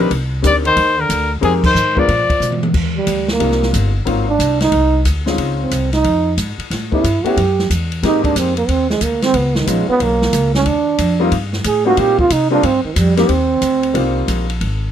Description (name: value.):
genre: jazz, small-group swing and bop.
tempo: 182 BPM.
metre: 4/4.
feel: swing 64% on 8ths.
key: Eb major.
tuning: A4 = 441 Hz.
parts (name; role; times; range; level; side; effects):
warm trumpet; melody; 0.0-2.6 s; Ab4 to D5; -15 LUFS; left 4 dB; none.
breathy trombone; second line; 0.0-14.3 s; C3 to Ab4; -17 LUFS; right 4 dB; none.
warm concert grand piano; accompaniment; 0.0-14.4 s; Gb3 to Bb4; -19 LUFS; left 5 dB; none.
upright bass; bass; 0.0-14.9 s; G1 to C3; -18 LUFS; equal; none.
open jazz drum kit; drums; 0.1-14.7 s; crash cymbal, hi-hat, kick drum, ride cymbal, snare drum, toms; -22 LUFS; equal; none.
room: light reverb.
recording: close, detailed microphones.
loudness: -13 LUFS.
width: side -9 dB against mid.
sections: 0.0-2.7 A section; 2.7-13.3 B section; 13.3-14.9 B section.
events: band accent 1.6; drum fill 2.4-2.7; trombone solo 2.7-14.9.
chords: 0.1 Cm9; 1.4 Fm11; 2.1 Bb; 2.7 Eb69; 4.1 Ab13; 5.4 Dbmaj9; 6.7 A9; 8.0 Abmaj9; 9.3 Db9; 10.7 Eb69.